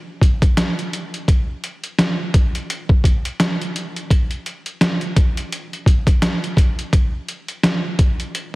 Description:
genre	hip hop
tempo	85 BPM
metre	4/4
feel	swing 56% on 16ths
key	none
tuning	none
part	trip hop sampler-style drum kit	drums	0.2-8.5 s	hi-hat, kick drum, snare drum	-16 LUFS	equal	overdrive
room	light reverb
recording	heavily compressed radio sound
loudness	-16 LUFS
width	side -21 dB against mid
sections	0.0-8.6 A section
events	none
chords	none

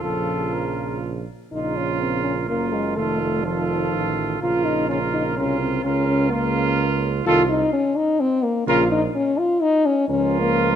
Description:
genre	classical, brass quintet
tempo	126 BPM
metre	3/4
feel	rubato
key	Bb minor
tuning	A4 = 440 Hz
part	mellow trumpet	melody	0.0-10.8 s	A4 to Bb4	-28 LUFS	left 5 dB	none
part	clear trumpet	second line	0.0-10.8 s	F4	-26 LUFS	right 9 dB	none
part	mellow French horn	accompaniment	0.0-10.8 s	F3 to F4	-22 LUFS	left 2 dB	none
part	mellow trombone	accompaniment	0.0-10.8 s	Db3 to F3	-29 LUFS	right 5 dB	none
part	clear tuba	bass	0.0-10.8 s	F1 to Db2	-27 LUFS	right 4 dB	none
room	moderate scoring stage reverb, RT60 1.7 s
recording	close, detailed microphones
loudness	-19 LUFS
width	side -9 dB against mid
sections	0.0-1.5 A section; 1.5-10.8 B section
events	none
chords	0.0 Bbm; 3.0 F7; 4.4 Bbm; 5.8 Bbm/Db; 7.3 F7(no3)/C; 8.7 Bbm; 10.1 Bbm/Db

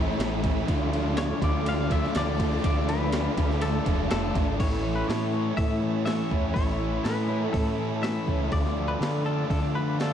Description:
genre	rock, shoegaze and dream pop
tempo	122 BPM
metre	4/4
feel	straight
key	A major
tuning	A4 = 440 Hz
part	semi-hollow electric guitar	melody	0.0-10.1 s	A4 to F5	-34 LUFS	left 3 dB	tremolo, tape echo
part	sweeping resonant pad	sustained chords	0.0-10.1 s	A4 to D6	-38 LUFS	right 2 dB	chorus
part	picked twelve-string acoustic guitar	arpeggios	0.0-10.1 s	E3 to D4	-36 LUFS	right 6 dB	lush chorus, tape echo
part	biting overdriven guitar	riff	0.0-10.1 s	A2 to F4	-33 LUFS	right 12 dB	reverse reverb
part	overdriven electric guitar	riff	0.0-4.6 s	A2 to D4	-33 LUFS	right 1 dB	none
part	overdriven semi-hollow guitar	riff	0.0-10.1 s	A2 to F4	-31 LUFS	left 11 dB	wide subtle chorus
part	growling fingered electric bass	bass	0.0-10.1 s	E1 to D3	-30 LUFS	equal	overdrive
part	boom bap sampler-style drum kit	drums	0.2-10.1 s	crash cymbal, hi-hat, kick drum, ride cymbal, snare drum	-29 LUFS	equal	none
room	light reverb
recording	dark, warm production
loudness	-24 LUFS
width	side -9 dB against mid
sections	0.0-4.6 A section; 4.6-10.1 B section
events	none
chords	0.0 A; 0.7 Dm; 4.6 A; 8.5 Dm

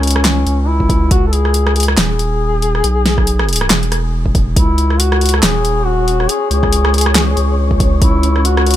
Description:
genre	deep dubstep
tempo	139 BPM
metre	4/4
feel	swing 57% on 16ths, half-time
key	C# minor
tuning	A4 = 439 Hz
part	mellow duduk	melody	0.0-8.8 s	C#4 to A4	-18 LUFS	left 2 dB	dub echo
part	saturated sub bass	bass	0.0-8.8 s	D#1 to C#2	-15 LUFS	equal	none
part	deep house drum kit	drums	0.0-8.8 s	handclaps, hi-hat, rim click, snare drum	-16 LUFS	equal	none
part	electronic kick drum	drums	0.8-8.1 s	none	-14 LUFS	equal	none
part	wind-like tuned noise texture	texture	4.9-8.8 s	C#4 to C#5	-23 LUFS	left 3 dB	built-in reverb
room	little or no reverb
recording	none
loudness	-11 LUFS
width	side -12 dB against mid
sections	0.0-8.8 A section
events	none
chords	0.0 C#5

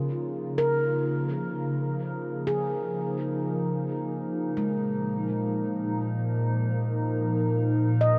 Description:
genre	ambient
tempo	free time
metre	none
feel	none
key	unclear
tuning	A4 = 439 Hz
part	warbly tape-like pad	sustained chords	0.0-8.2 s	Bb2 to C5	-29 LUFS	equal	chorus, built-in reverb, phaser
part	handpan	arpeggios	0.0-8.2 s	Ab3 to Eb5	-33 LUFS	equal	diffuse ambient delay
part	analog drone	drone	0.0-8.2 s	Bb3 to Bb4	-38 LUFS	equal	chorus
room	wet huge ambient reverb, RT60 8.7 s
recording	none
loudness	-28 LUFS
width	mono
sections	0.0-8.2 A section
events	filter sweep on ambient pad 0.0-8.2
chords	0.0 Db69; 4.5 Abadd9/Bb

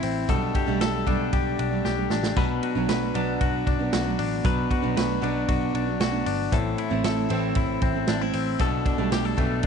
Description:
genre	jangly indie pop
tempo	116 BPM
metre	4/4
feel	straight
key	unclear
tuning	A4 = 441 Hz
part	picked steel-string acoustic guitar	accompaniment	0.0-9.7 s	A2 to E4	-28 LUFS	right 10 dB	none
part	direct-recorded clean electric guitar	arpeggios	0.0-9.7 s	A2 to B4	-27 LUFS	left 14 dB	slapback echo
part	vintage muted picked electric bass	bass	0.0-9.7 s	G1 to B1	-30 LUFS	left 1 dB	none
part	vintage drum kit	drums	0.0-9.7 s	hi-hat, kick drum, ride cymbal, snare drum, splash cymbal	-27 LUFS	right 2 dB	none
room	light reverb, studio reverb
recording	1960s-style stereo with parts hard left and right, nothing above 10.3 kHz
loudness	-22 LUFS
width	side -6 dB against mid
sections	0.0-9.7 A section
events	drum fill 1.8-2.4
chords	0.3 Gadd9/B; 2.4 Bm; 6.5 Am; 8.6 Gadd9/B

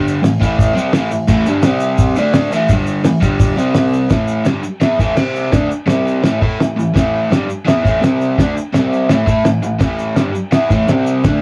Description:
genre	garage rock duo or trio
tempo	169 BPM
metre	4/4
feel	straight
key	unclear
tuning	A4 = 439 Hz
part	overdriven electric guitar	riff	0.0-11.4 s	G2 to A4	-17 LUFS	equal	none
part	tube shaker	percussion	0.1-11.3 s	none	-41 LUFS	equal	none
part	cloth-damped thuddy drum kit	drums	0.2-11.3 s	crash cymbal, hi-hat, kick drum, snare drum	-18 LUFS	equal	none
room	wet booth ambience, RT60 0.2 s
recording	rough rehearsal-room recording, cassette tape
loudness	-15 LUFS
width	mono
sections	0.0-4.1 A section; 4.1-11.4 B section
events	none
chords	0.2 A5; 1.6 C5; 2.2 D5; 2.5 A5; 2.7 G5; 3.1 A5; 3.2 G5; 3.6 C5; 4.1 A5; 5.2 C5; 5.5 Asus4; 5.9 C5; 6.2 A5; 8.0 C5; 8.4 Asus4; 8.7 C5; 9.1 A5; 10.9 C5

